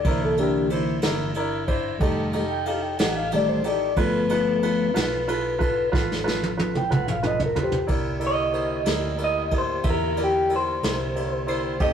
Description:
slow blues; 61 BPM (dotted quarters); 12/8; straight; C mixolydian; A4 = 438 Hz
mellow tonewheel organ; sustained chords; 0.0-11.9 s; D3 to G5; -26 LUFS; left 2 dB; slow rotary speaker
vintage muted fingered electric bass; bass; 0.0-11.9 s; F1 to E2; -32 LUFS; equal
vintage brush drum kit; drums; 0.0-11.9 s; kick drum, ride cymbal, snare drum, toms; -27 LUFS; right 1 dB
clear baby grand piano; accompaniment; 0.1-11.9 s; D4 to E5; -28 LUFS; right 2 dB
electric guitar through a small old amp; melody; 8.3-11.9 s; G4 to Eb5; -25 LUFS; equal; spring reverb
electric guitar at the edge of break-up; second line; 11.5-11.9 s; C5 to Eb5; -31 LUFS; equal
moderate stone room reverb, RT60 1.1 s; rough rehearsal-room recording; -21 LUFS; side -8 dB against mid
0.0-7.9 A section; 7.9-11.9 B section
tonewheel organ solo 0.0-7.9; drum fill 5.9-7.9
0.1 C9; 2.0 F9; 4.0 G9; 7.9 C9

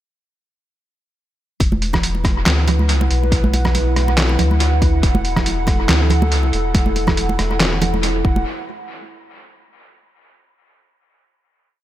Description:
deep dubstep; 140 BPM; 4/4; swing 55% on 16ths, half-time; A4 = 439 Hz
dark analog pad; sustained chords; 2.1-8.4 s; E4 to F#5; -24 LUFS; right 1 dB; chorus
soft dub sub bass; bass; 1.6-8.4 s; E1 to D2; -18 LUFS; equal
electronic kick drum; drums; 1.6-8.3 s; -18 LUFS; equal
trip hop sampler-style drum kit; drums; 1.6-8.1 s; handclaps, hi-hat, rim click, snare drum; -21 LUFS; equal; dub echo
congas; percussion; 1.6-8.4 s; -23 LUFS; right 4 dB; dub echo
little or no reverb; echo-heavy mix; -14 LUFS; side -13 dB against mid
1.6-8.5 drop; 8.5-10.2 final hit
drop 1.6-8.5
1.6 E5; 8.5 N.C.

